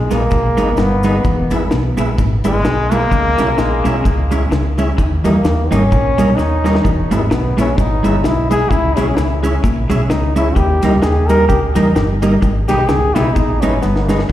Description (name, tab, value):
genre	ska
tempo	129 BPM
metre	4/4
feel	swing 57% on 8ths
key	G# harmonic minor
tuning	A4 = 439 Hz
part	clear trombone	melody	0.0-14.3 s	G#3 to A#4	-18 LUFS	left 1 dB	tape echo, slapback echo
part	fingered electric bass	bass	0.0-14.3 s	E1 to E2	-17 LUFS	equal	none
part	clean electric guitar	accompaniment	0.1-14.2 s	G3 to E4	-20 LUFS	right 3 dB	slapback echo
part	clean electric guitar	riff	0.1-14.3 s	E2 to E3	-24 LUFS	left 4 dB	vibrato effect, tape echo, slapback echo
part	mellow tonewheel organ	stabs	0.1-14.2 s	D#4 to E5	-24 LUFS	left 2 dB	chorus vibrato, fast rotary speaker, tape echo, slapback echo
part	deep reggae drum kit	drums	0.1-14.3 s	hi-hat, kick drum, snare drum	-19 LUFS	equal	none
part	cabasa	percussion	0.1-14.2 s	none	-42 LUFS	right 4 dB	tape echo, slapback echo
room	light reverb, small room ambience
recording	live gig heard through the venue's PA, recital hall reverb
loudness	-12 LUFS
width	side -13 dB against mid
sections	0.0-14.3 A section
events	trombone solo 0.0-14.3; drum fill 6.4-6.8, 13.8-14.3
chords	0.0 G#m; 1.2 E; 3.1 C#m; 5.0 D#; 6.8 E; 8.7 C#m; 10.6 D#; 12.4 G#m